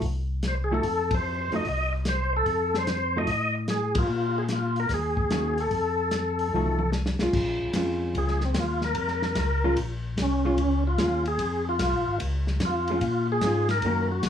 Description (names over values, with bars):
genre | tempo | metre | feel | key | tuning
soul jazz organ trio | 148 BPM | 4/4 | swing 67% on 8ths | Bb minor | A4 = 440 Hz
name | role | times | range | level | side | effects
hollow-body jazz guitar | accompaniment | 0.0-14.1 s | Eb3 to Gb4 | -28 LUFS | right 1 dB | none
tonewheel organ | bass | 0.0-14.3 s | Ab1 to Bb2 | -28 LUFS | left 1 dB | overdrive, slow rotary speaker
warm soul drum kit | drums | 0.0-14.3 s | crash cymbal, hi-hat, kick drum, ride cymbal, snare drum, toms | -32 LUFS | left 1 dB | none
percussive tonewheel organ | melody | 0.5-14.3 s | C4 to Eb5 | -27 LUFS | left 1 dB | slow rotary speaker, chorus vibrato, plate reverb
room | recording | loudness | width
moderate studio ambience, RT60 0.4 s | small room ambience | -23 LUFS | side -9 dB against mid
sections
0.0-7.3 A section; 7.3-14.3 B section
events
band accent 1.0, 3.9; drum fill 6.5-7.3; tonewheel organ solo 7.3-14.3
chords
0.0 F; 4.1 Bb5; 4.9 Ebm7; 5.7 F7b9; 7.3 Bbm7